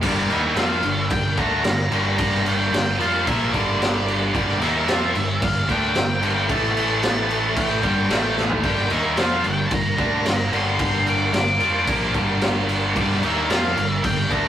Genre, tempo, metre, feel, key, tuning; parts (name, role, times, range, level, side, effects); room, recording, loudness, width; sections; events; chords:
quiet-loud alternative rock; 111 BPM; 4/4; straight; G dorian; A4 = 440 Hz
percussive tonewheel organ; sustained chords; 0.0-14.5 s; G3 to Bb4; -32 LUFS; equal; chorus vibrato, fast rotary speaker
biting overdriven guitar; riff; 0.0-14.5 s; G2 to F4; -28 LUFS; left 6 dB
distorted electric guitar; riff; 0.0-14.5 s; G2 to F4; -27 LUFS; equal; overdrive
heavy high-gain guitar; riff; 0.0-14.5 s; G2 to F4; -26 LUFS; right 6 dB; distortion
overdriven picked electric bass; bass; 0.0-14.5 s; G1 to F2; -28 LUFS; equal
raw garage drum kit; drums; 0.0-14.4 s; crash cymbal, kick drum, snare drum, toms; -23 LUFS; equal
octave-fuzz lead guitar; melody; 0.1-14.5 s; D5 to D6; -26 LUFS; left 1 dB; distortion, analog delay
moderate stone room reverb, RT60 1.3 s; rough rehearsal-room recording, warm saturation; -18 LUFS; side -10 dB against mid
0.0-14.5 A section
drum fill 8.4
0.0 Gm; 6.5 A5; 7.8 Gm; 8.1 A5; 8.6 Gm